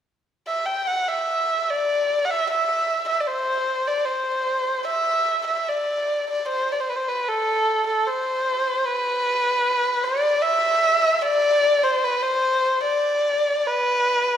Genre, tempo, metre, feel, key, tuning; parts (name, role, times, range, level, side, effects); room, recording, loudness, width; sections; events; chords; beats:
celtic folk; 75 BPM; 3/4; uneven beats, rubato; D mixolydian; A4 = 440 Hz
warm erhu; solo; 0.5-14.4 s; A4 to G5; -20 LUFS; equal
wet scoring stage reverb, RT60 1.8 s; recorded in a church or concert hall; -20 LUFS; side -9 dB against mid
0.9-5.7 A section; 5.7-14.4 B section
0.06 | 0.88 1.71 2.50 | 3.29 4.06 4.85 | 5.66 6.47 7.28 | 8.07 8.85 9.63 | 10.42 11.22 12.03 | 12.84 13.68